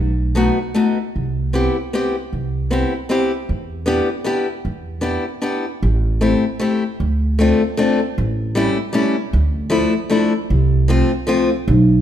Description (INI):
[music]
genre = musette waltz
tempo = 154 BPM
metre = 3/4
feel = swing 55% on 8ths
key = E minor, A minor from 5.8 s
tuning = A4 = 440 Hz
[part]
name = upright bass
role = bass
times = 0.0-12.0 s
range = A1 to E2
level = -18 LUFS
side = right 1 dB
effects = none
[part]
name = picked old ladder-braced acoustic guitar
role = accompaniment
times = 0.3-11.5 s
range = F3 to G4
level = -18 LUFS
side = left 2 dB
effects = none
[sound]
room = moderate recital hall reverb, RT60 1.6 s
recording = minimal, uncompressed stereo recording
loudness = -16 LUFS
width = side -10 dB against mid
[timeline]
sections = 0.0-5.8 A section; 5.8-12.0 B section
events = none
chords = 0.0 B7; 1.2 Cmaj7; 3.5 Em7; 5.8 Am7; 7.0 Dm7; 8.2 A7; 9.3 Dmadd9; 10.5 F/C